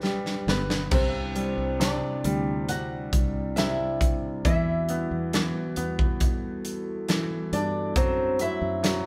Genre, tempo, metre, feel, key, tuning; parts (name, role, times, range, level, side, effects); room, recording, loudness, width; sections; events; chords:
pop ballad; 68 BPM; 4/4; straight; E minor; A4 = 443 Hz
clear concert grand piano; accompaniment; 0.0-9.1 s; C3 to B3; -34 LUFS; equal
glass harmonica; sustained chords; 0.0-9.1 s; G3 to D5; -36 LUFS; equal
fingered electric bass; bass; 0.0-9.0 s; G1 to G2; -35 LUFS; equal
modern studio drum kit; drums; 0.0-9.0 s; crash cymbal, hi-hat, kick drum, snare drum; -29 LUFS; equal
flamenco guitar; melody; 0.5-9.1 s; B3 to F#5; -32 LUFS; equal
light reverb; band playing live in one room; -26 LUFS; mono
0.0-9.1 A section
drum fill 0.0-0.9
0.0 G; 0.9 Cadd9; 4.5 Emadd9; 8.0 D7